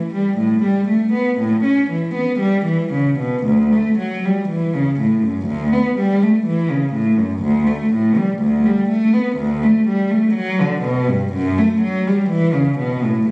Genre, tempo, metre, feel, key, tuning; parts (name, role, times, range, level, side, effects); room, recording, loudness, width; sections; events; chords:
classical, baroque-style suite movement for unaccompanied cello; 61 BPM; 4/4; rubato; D major; A4 = 444 Hz
warm cello; solo; 0.0-13.3 s; D2 to C#4; -15 LUFS; equal
wet recital hall reverb, RT60 1.6 s; recorded on a phone in the room, club reverb, compression; -15 LUFS; side -29 dB against mid
0.0-3.5 A section; 3.5-13.3 A section